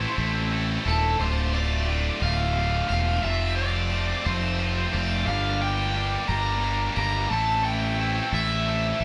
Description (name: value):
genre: post-rock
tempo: 59 BPM (dotted quarters)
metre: 6/8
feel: straight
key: D minor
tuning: A4 = 441 Hz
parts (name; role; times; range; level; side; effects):
- raw garage guitar; melody; 0.0-9.0 s; A4 to Bb5; -30 LUFS; equal; overdrive
- tight distorted guitar; riff; 0.0-9.0 s; D2 to A4; -30 LUFS; equal; distortion
- fuzz fingered electric bass; bass; 0.0-9.0 s; D1 to A1; -28 LUFS; equal; overdrive
room: moderate large studio reverb, RT60 1.0 s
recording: band playing live in one room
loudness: -25 LUFS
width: mono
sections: 0.0-9.0 A section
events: none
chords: 0.0 Am; 1.2 Dm; 3.2 F; 5.3 Gm; 7.3 Am7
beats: 0.18 | 1.20 2.22 | 3.24 4.26 | 5.27 6.29 | 7.31 8.33